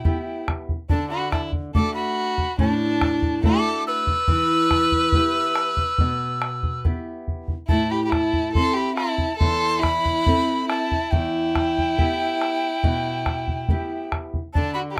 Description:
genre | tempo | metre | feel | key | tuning
andean folk, Andean ensemble | 70 BPM | 4/4 | straight | E minor | A4 = 440 Hz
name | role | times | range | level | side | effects
breathy bright large quena | melody | 0.0-15.0 s | G5 to E6 | -27 LUFS | equal | none
rich violin | second line | 0.0-15.0 s | D4 to B4 | -29 LUFS | equal | none
flamenco guitar | accompaniment | 0.0-15.0 s | E2 to A4 | -28 LUFS | equal | none
bombo | percussion | 0.0-15.0 s | none | -26 LUFS | equal | none
room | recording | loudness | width
moderate small room ambience, RT60 0.5 s | rough home demo mix | -22 LUFS | mono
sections
0.0-7.7 A section; 7.7-15.0 A section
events
none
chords
0.0 Em; 0.9 D; 4.3 Em; 7.7 Am; 11.1 Em

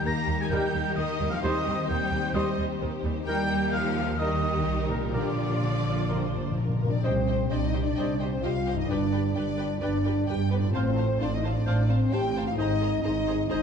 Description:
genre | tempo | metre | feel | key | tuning
cinematic, heroic adventure film score | 130 BPM | 4/4 | straight | Eb major, C minor from 7.0 s | A4 = 442 Hz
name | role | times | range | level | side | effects
warm symphonic violin section | melody | 0.0-13.6 s | Bb4 to Bb5 | -36 LUFS | left 4 dB | none
silver concert flute | second line | 0.0-13.6 s | Bb4 to Bb6 | -36 LUFS | left 1 dB | none
warm symphonic violin section | second line | 0.0-13.6 s | G4 to Bb5 | -38 LUFS | left 2 dB | none
rich studio viola section | accompaniment | 0.0-13.6 s | Eb3 to C5 | -36 LUFS | right 2 dB | none
concert harp | arpeggios | 0.0-13.6 s | G2 to B4 | -34 LUFS | left 7 dB | none
bright symphonic double bass section | bass | 0.0-13.6 s | G1 to Eb2 | -31 LUFS | right 4 dB | none
rich symphonic cello section | bass | 0.0-13.6 s | C2 to Bb3 | -31 LUFS | right 2 dB | none
mellow oboe | second line | 0.1-13.6 s | Bb4 to Bb5 | -40 LUFS | right 1 dB | none
mellow French horn section | sustained chords | 0.5-13.6 s | G3 to G4 | -31 LUFS | left 3 dB | none
mellow trumpet | stabs | 0.5-6.3 s | Bb4 to C5 | -38 LUFS | right 1 dB | none
timpani | percussion | 5.1-9.6 s | G2 to C3 | -32 LUFS | equal | none
mellow clarinet | second line | 7.1-13.6 s | B4 to C5 | -41 LUFS | equal | none
room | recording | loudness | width
wet concert hall reverb, RT60 1.7 s | dark, warm production | -24 LUFS | side -7 dB against mid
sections
0.0-7.0 A section; 7.0-13.6 B section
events
timpani fill 5.1-7.0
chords
0.0 Eb; 1.4 Cm/Eb; 3.3 Eb; 5.1 Bb6; 7.0 Cm; 8.9 G; 10.7 F/A; 12.6 Abadd9

